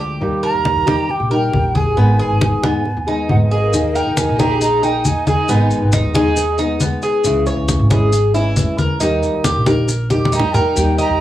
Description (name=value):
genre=latin, Cuban son and guajira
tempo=136 BPM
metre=4/4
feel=straight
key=G# minor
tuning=A4 = 442 Hz
part: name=nylon-string guitar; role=accompaniment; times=0.0-11.2 s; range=C#3 to G#4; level=-20 LUFS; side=left 1 dB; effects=cassette tape
part: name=Cuban tres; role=arpeggios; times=0.0-11.2 s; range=B3 to D#5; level=-20 LUFS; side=right 1 dB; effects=cassette tape
part: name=upright bass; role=bass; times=0.0-11.2 s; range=G#1 to D#3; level=-18 LUFS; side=right 1 dB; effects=none
part: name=congas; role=percussion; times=0.2-11.2 s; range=none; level=-20 LUFS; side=left 1 dB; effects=none
part: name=jazz flute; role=melody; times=0.4-6.6, 10.3-11.2 s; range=D#5 to A#5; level=-21 LUFS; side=right 2 dB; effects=cassette tape
part: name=warm studio violin section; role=second line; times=3.3-6.6, 10.3-11.2 s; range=A#3 to G4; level=-26 LUFS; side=right 1 dB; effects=cassette tape
part: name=maracas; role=percussion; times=3.7-11.2 s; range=none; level=-27 LUFS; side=left 3 dB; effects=none
room=light reverb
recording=home recording on cassette, small room ambience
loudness=-13 LUFS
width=side -13 dB against mid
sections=0.0-3.7 A section; 3.7-11.2 B section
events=drum fill 10.1-10.8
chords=0.2 D#; 2.0 G#m; 3.7 D#sus4; 5.5 G#m; 7.2 C#m; 9.0 D#